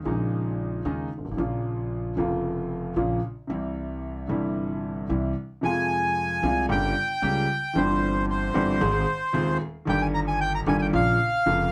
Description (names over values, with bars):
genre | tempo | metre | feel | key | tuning
tango | 113 BPM | 4/4 | rubato | F minor | A4 = 439 Hz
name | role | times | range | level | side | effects
warm concert grand piano | accompaniment | 0.0-11.7 s | Eb1 to Ab4 | -29 LUFS | equal | none
upright bass | bass | 0.1-11.7 s | F1 to F2 | -34 LUFS | equal | none
bandoneon | melody | 5.6-11.7 s | C5 to Bb5 | -28 LUFS | equal | none
room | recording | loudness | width
wet booth ambience, RT60 0.3 s | heard from further back in the room | -26 LUFS | mono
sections
0.0-5.6 A section; 5.6-11.7 B section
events
none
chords
0.0 Eb7sus4; 1.4 Bbm; 3.5 C; 5.6 Fm; 6.7 Gdim; 7.8 C/G; 8.8 Ab; 9.9 Eb/G; 10.9 Bbm